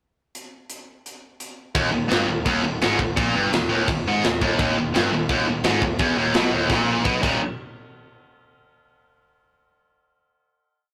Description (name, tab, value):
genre	heavy metal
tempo	170 BPM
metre	4/4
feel	straight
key	unclear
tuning	A4 = 440 Hz
part	tight metal drum kit	drums	0.3-7.3 s	crash cymbal, hi-hat, kick drum, snare drum	-27 LUFS	equal	none
part	heavy high-gain guitar	riff	1.8-7.4 s	Eb2 to Eb3	-23 LUFS	equal	distortion
part	fuzz picked electric bass	bass	1.8-7.4 s	Eb1 to Cb2	-33 LUFS	equal	overdrive
room	moderate small room ambience, RT60 0.5 s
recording	rough rehearsal-room recording, tube saturation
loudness	-21 LUFS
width	mono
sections	0.3-1.8 pickup bar; 1.8-7.4 riff; 7.4-8.8 final hit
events	drum fill 6.7-7.4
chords	0.3 N.C.; 1.8 Eb; 7.2 Eb5; 7.4 N.C.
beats	| 0.34 0.69 1.04 1.40 | 1.75 2.10 2.46 2.81 | 3.16 3.52 3.87 4.22 | 4.58 4.93 5.29 5.64 | 6.00 6.35 6.70 7.06